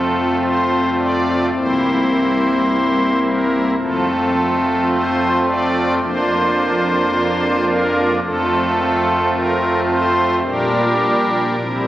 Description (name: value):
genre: classical, chorale-style piece for pipe organ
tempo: 54 BPM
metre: 4/4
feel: rubato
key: F major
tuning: A4 = 441 Hz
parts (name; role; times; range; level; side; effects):
- pipe organ, strings celeste; solo; 0.0-11.9 s; C1 to D5; -15 LUFS; equal; none
room: wet church reverb, RT60 3.5 s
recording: recorded on a phone in the room, club reverb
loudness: -15 LUFS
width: side -14 dB against mid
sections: 0.0-11.9 A section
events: none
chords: 0.0 F; 1.5 C7; 3.8 F; 6.0 Bb/F; 8.2 F; 10.4 Gm/Bb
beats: 0.42 1.55 2.67 | 3.79 4.92 6.04 7.14 | 8.24 9.34 10.45 11.59